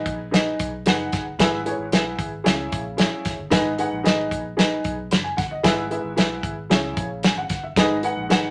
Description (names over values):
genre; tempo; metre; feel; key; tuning
uptempo 1960s-style soul; 113 BPM; 4/4; straight; unclear; A4 = 441 Hz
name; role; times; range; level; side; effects
dark upright piano; accompaniment; 0.0-8.5 s; G#2 to B5; -26 LUFS; equal; none
vintage muted fingered electric bass; bass; 0.0-8.5 s; F#1 to C#2; -37 LUFS; equal; none
warm soul drum kit; drums; 0.1-8.4 s; hi-hat, kick drum, snare drum; -23 LUFS; equal; none
room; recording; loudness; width
light reverb; none; -22 LUFS; mono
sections
0.0-8.5 A section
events
none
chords
0.0 G#m; 1.4 E/G#; 2.5 C#m; 3.5 G#m; 5.6 E/G#; 6.7 C#m; 7.8 G#m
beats
0.33 0.86 | 1.39 1.93 2.46 2.99 | 3.52 4.05 4.58 5.11 | 5.64 6.17 6.71 7.24 | 7.77 8.30